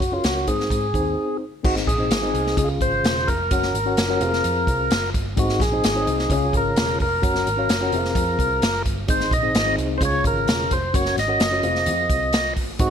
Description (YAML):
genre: uptempo 1960s-style soul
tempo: 129 BPM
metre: 4/4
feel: straight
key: Ab mixolydian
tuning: A4 = 440 Hz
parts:
  - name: tonewheel organ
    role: melody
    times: 0.0-12.9 s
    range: F4 to Eb5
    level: -23 LUFS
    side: right 1 dB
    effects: overdrive, slow rotary speaker
  - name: vintage muted picked electric bass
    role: bass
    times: 0.0-12.9 s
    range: Fb1 to Ab2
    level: -27 LUFS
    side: right 1 dB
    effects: none
  - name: swinging big-band drum kit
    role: drums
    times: 0.0-12.9 s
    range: crash cymbal, hi-hat, kick drum, snare drum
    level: -23 LUFS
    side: equal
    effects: none
  - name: mellow tine electric piano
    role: accompaniment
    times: 0.1-12.9 s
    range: Ab2 to Gb5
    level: -26 LUFS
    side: left 3 dB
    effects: medium stereo tremolo, plate reverb
room: light reverb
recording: none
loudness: -18 LUFS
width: side -8 dB against mid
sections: 0.0-1.6 A section; 1.6-12.9 B section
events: break 1.2-1.6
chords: 0.5 Ab; 2.6 Db; 3.5 Gb; 4.2 Fm; 5.4 Ab; 6.3 Db; 7.2 Gb; 7.9 Fm; 9.1 Ab; 10.0 Db; 10.9 Gb; 11.6 Fm